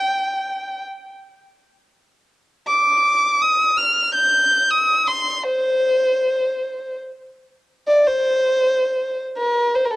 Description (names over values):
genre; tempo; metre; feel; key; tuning
arabic; 81 BPM; 4/4; straight; C maqam rast; A4 = 440 Hz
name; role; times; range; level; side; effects
dark violin; solo; 0.0-10.0 s; A4 to G6; -16 LUFS; equal; cassette tape
room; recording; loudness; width
light reverb; home recording on cassette, lossy compression artefacts; -16 LUFS; side -19 dB against mid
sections
0.0-9.4 A section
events
none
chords
none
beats
| 0.46 1.21 1.95 2.69 | 3.43 4.17 4.91 5.66 | 6.39 7.14 7.88 8.62 | 9.36